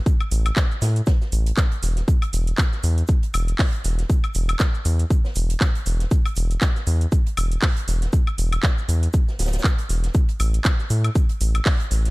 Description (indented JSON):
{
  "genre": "deep house",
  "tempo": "119 BPM",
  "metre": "4/4",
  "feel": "swing 56% on 16ths",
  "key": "unclear",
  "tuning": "A4 = 440 Hz",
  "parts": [
    { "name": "electronic kick drum", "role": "drums", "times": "0.1-11.8 s", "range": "none", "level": "-19 LUFS", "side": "equal", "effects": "none" },
    { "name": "house drum kit", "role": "drums", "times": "0.1-12.1 s", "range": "handclaps, hi-hat, shaker, woodblock", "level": "-28 LUFS", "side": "equal", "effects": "none" },
    { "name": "open jazz drum kit", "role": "drums", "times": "0.1-12.1 s", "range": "hi-hat, shaker, snare drum", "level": "-36 LUFS", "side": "right 1 dB", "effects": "sidechain pumping on hats, high-pass filter on hats, high-pass filter on snare, sidechain pumping on perc, high-pass filter on perc, high-pass filter on room" },
    { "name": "round analog bass", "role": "bass", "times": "0.3-12.1 s", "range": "D1 to A2", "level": "-20 LUFS", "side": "equal", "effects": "sidechain pumping" }
  ],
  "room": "little or no reverb",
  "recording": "dark, warm production",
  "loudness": "-18 LUFS",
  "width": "side -23 dB against mid",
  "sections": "0.0-10.1 A section; 10.1-12.1 A section",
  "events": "drop 0.0-10.1, 10.1-12.1",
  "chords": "none",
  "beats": "| 0.06 0.57 1.07 1.57 | 2.08 2.58 3.09 3.59 | 4.10 4.60 5.10 5.61 | 6.11 6.62 7.12 7.62 | 8.13 8.63 9.14 9.64 | 10.15 10.65 11.15 11.66"
}